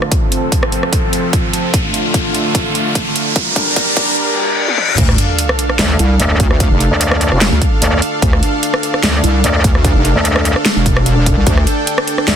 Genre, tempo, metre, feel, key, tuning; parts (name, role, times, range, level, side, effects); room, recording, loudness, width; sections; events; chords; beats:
heavy wobble dubstep; 148 BPM; 4/4; half-time; D minor; A4 = 441 Hz
supersaw pad; sustained chords; 0.0-12.4 s; D3 to G5; -18 LUFS; equal; sidechain pumping, low-pass filter
dubstep drum kit; drums; 0.0-12.4 s; crash cymbal, handclaps, hi-hat, rim click, snare drum, toms; -17 LUFS; right 1 dB; studio ambience, soft clipping on snare
riser, reverse cymbal and sub drop; sound effects; 0.2-6.6 s; -18 LUFS; left 1 dB
electronic kick drum; drums; 0.1-11.6 s; -16 LUFS; equal; studio ambience
wobble bass; bass; 5.0-11.7 s; E1 to D2; -13 LUFS; equal; chorus, overdrive
metallic wobble bass; bass; 5.8-12.4 s; F1 to D2; -13 LUFS; equal; chorus, overdrive
digital ambience; dense, heavily limited modern master, high-pass filter; -11 LUFS; side -8 dB against mid
0.0-5.0 A section; 5.0-12.4 B section
build-up 0.0-5.0; filter sweep on supersaw synth 0.0-5.0; filter sweep 0.0-5.0; riser 0.2-4.2; drum fill 1.7-4.2, 4.7-5.0; reverse cymbal 4.2-5.0; drop 5.0-12.4; impact 5.0-6.6
0.1 F; 1.7 Dm; 3.4 Gm; 5.0 Dm
| 0.12 0.52 0.93 1.33 | 1.74 2.14 2.55 2.95 | 3.36 3.76 4.17 4.58 | 4.98 5.39 5.79 6.20 | 6.60 7.01 7.41 7.82 | 8.22 8.63 9.03 9.44 | 9.85 10.25 10.66 11.06 | 11.47 11.87 12.28